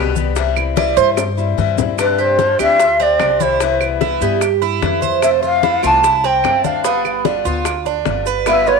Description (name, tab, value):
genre	latin, Cuban son and guajira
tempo	148 BPM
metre	4/4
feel	straight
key	C major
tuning	A4 = 444 Hz
part	picked acoustic archtop guitar	accompaniment	0.0-8.8 s	B2 to G4	-22 LUFS	left 15 dB	none
part	upright bass	bass	0.0-8.8 s	G1 to G2	-24 LUFS	left 1 dB	none
part	bongos	percussion	0.2-8.8 s	none	-25 LUFS	left 15 dB	none
part	congas	percussion	0.2-8.8 s	none	-24 LUFS	left 14 dB	none
part	maracas	percussion	0.2-8.8 s	none	-31 LUFS	right 19 dB	none
part	claves	percussion	0.6-8.7 s	none	-26 LUFS	right 11 dB	none
part	Cuban tres	arpeggios	0.8-8.8 s	B3 to D5	-19 LUFS	right 12 dB	none
part	breathy bright long shakuhachi	melody	2.0-8.8 s	B4 to A5	-14 LUFS	equal	none
part	flamenco guitar	second line	8.5-8.8 s	B4	-18 LUFS	right 13 dB	none
room	moderate plate reverb, RT60 2.6 s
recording	1960s-style stereo with parts hard left and right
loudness	-13 LUFS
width	side -4 dB against mid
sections	0.0-2.0 A section; 2.0-8.8 B section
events	Cuban tres solo 0.0-2.0; drum fill 1.2-2.0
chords	0.4 C; 2.0 G7sus4; 3.6 Cmaj7; 5.2 Fmaj7; 6.8 G7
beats	| 0.37 0.77 1.18 1.58 | 1.99 2.39 2.80 3.20 | 3.61 4.01 4.42 4.82 | 5.23 5.63 6.04 6.44 | 6.85 7.25 7.66 8.06 | 8.47